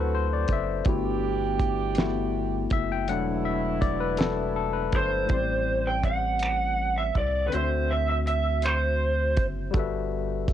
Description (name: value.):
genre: slow six-eight R&B.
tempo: 54 BPM (dotted quarters).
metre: 6/8.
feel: straight.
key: A dorian.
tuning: A4 = 439 Hz.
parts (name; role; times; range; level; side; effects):
barky tine electric piano; accompaniment; 0.0-10.5 s; A2 to G5; -29 LUFS; left 10 dB; cassette tape.
mellow horn section; stabs; 0.0-4.9 s; B2 to G4; -33 LUFS; right 11 dB; cassette tape, tape echo.
rubbery square bass; bass; 0.0-10.5 s; E1 to D2; -29 LUFS; right 1 dB; none.
damped 70s drum kit; drums; 0.5-10.5 s; finger snaps, hi-hat, kick drum, snare drum; -26 LUFS; right 1 dB; cassette tape.
lead guitar through a small cranked amp; melody; 5.0-9.4 s; B4 to G5; -26 LUFS; right 2 dB; overdrive, cassette tape.
room: studio reverb.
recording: home recording on cassette.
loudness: -24 LUFS.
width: side -10 dB against mid.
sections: 0.0-5.3 A section; 5.3-10.5 B section.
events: tine electric piano solo 0.0-5.3.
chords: 0.0 D9; 0.9 Gmaj13; 3.1 E9sus4; 5.3 Am7; 7.5 D9; 9.7 Gmaj13.